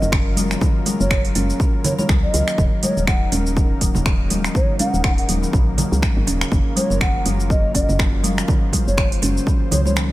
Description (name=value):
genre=afro house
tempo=122 BPM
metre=4/4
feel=swing 57% on 16ths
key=unclear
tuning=A4 = 440 Hz
part: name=mellow hollow bass bansuri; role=melody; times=0.0-9.9 s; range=Db5 to Gb5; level=-27 LUFS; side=equal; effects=dub echo
part: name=warm analog pad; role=sustained chords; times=0.0-10.1 s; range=Db3 to C5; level=-29 LUFS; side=left 1 dB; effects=chorus, sidechain pumping
part: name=woody FM bass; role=bass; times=0.0-10.1 s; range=Eb1 to Db2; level=-22 LUFS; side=equal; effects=sidechain pumping
part: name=house drum kit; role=drums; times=0.0-10.1 s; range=cabasa, finger snaps, hi-hat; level=-25 LUFS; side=right 1 dB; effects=none
part: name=congas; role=percussion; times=0.0-9.9 s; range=none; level=-26 LUFS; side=right 1 dB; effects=none
part: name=kalimba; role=arpeggios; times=0.1-10.0 s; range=Eb3 to Db4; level=-25 LUFS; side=left 2 dB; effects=sidechain pumping
part: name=electronic kick drum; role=drums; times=0.1-9.6 s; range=none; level=-19 LUFS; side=equal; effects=none
room=small room reverb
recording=none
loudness=-16 LUFS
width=side -16 dB against mid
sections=0.0-10.1 A section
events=break 10.0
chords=0.0 Gbmaj7; 2.6 Ebm7; 6.5 Gbmaj7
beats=0.12 | 0.62 1.11 1.60 2.09 | 2.58 3.08 3.57 4.06 | 4.55 5.04 5.53 6.03 | 6.52 7.01 7.50 7.99 | 8.48 8.98 9.47 9.96